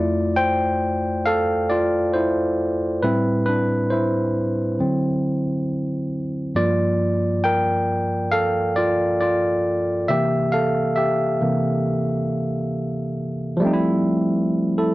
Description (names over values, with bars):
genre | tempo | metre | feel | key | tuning
R&B | 68 BPM | 4/4 | swing 61% on 16ths | F major | A4 = 440 Hz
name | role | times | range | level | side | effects
barky tine electric piano | solo | 0.0-14.9 s | F2 to G5 | -19 LUFS | equal | none
room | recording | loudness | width
moderate studio reverb, RT60 0.6 s | dark, warm production | -19 LUFS | side -18 dB against mid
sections
0.0-13.6 A section; 13.6-14.9 B section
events
tine electric piano solo 0.0-13.6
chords
0.0 Fmaj13; 3.0 Am7; 4.8 D7; 6.6 Gm9; 10.1 C7; 13.6 Fmaj7